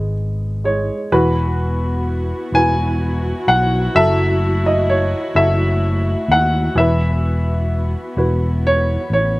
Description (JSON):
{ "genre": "acoustic folk-pop ballad", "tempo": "42 BPM (dotted quarters)", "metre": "6/8", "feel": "straight", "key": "E major", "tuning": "A4 = 440 Hz", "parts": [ { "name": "clear upright piano", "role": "melody", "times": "0.0-9.4 s", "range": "E3 to G#5", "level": "-18 LUFS", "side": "equal", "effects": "none" }, { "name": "fingered electric bass", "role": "bass", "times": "0.0-9.4 s", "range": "E1 to D#2", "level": "-18 LUFS", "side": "equal", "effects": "none" }, { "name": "dark chamber string section", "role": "sustained chords", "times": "1.1-9.4 s", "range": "A3 to F#4", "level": "-25 LUFS", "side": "equal", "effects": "none" } ], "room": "little or no reverb", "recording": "recorded outdoors, with no room sound", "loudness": "-15 LUFS", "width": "side -20 dB against mid", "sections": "0.0-1.1 A section; 1.1-9.4 B section", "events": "none", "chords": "0.0 G#madd11; 1.1 Esus2; 3.9 F#m7; 6.8 Esus2", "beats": "| 1.11 2.53 | 3.95 5.35 | 6.76 8.17" }